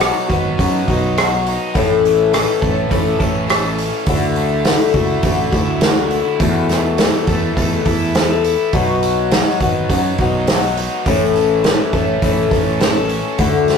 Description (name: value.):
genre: folk rock and heartland rock.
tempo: 103 BPM.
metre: 4/4.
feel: straight.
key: unclear.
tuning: A4 = 440 Hz.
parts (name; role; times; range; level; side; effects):
picked old ladder-braced acoustic guitar; accompaniment; 0.0-13.8 s; E2 to A4; -18 LUFS; left 7 dB; none.
overdriven electric guitar; riff; 0.0-13.8 s; E2 to A4; -22 LUFS; right 1 dB; none.
fingered electric bass; bass; 0.0-13.8 s; G#1 to F#2; -22 LUFS; right 2 dB; none.
unplugged drum kit; drums; 0.0-13.8 s; hi-hat, kick drum, rim click, snare drum; -18 LUFS; right 2 dB; none.
room: moderate stone room reverb, RT60 1.1 s.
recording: rough rehearsal-room recording, tube saturation.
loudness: -14 LUFS.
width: side -6 dB against mid.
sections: 0.0-13.8 A section.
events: none.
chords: 0.0 B; 1.8 A; 4.1 Dadd9; 6.4 Esus4; 8.7 B; 11.1 A.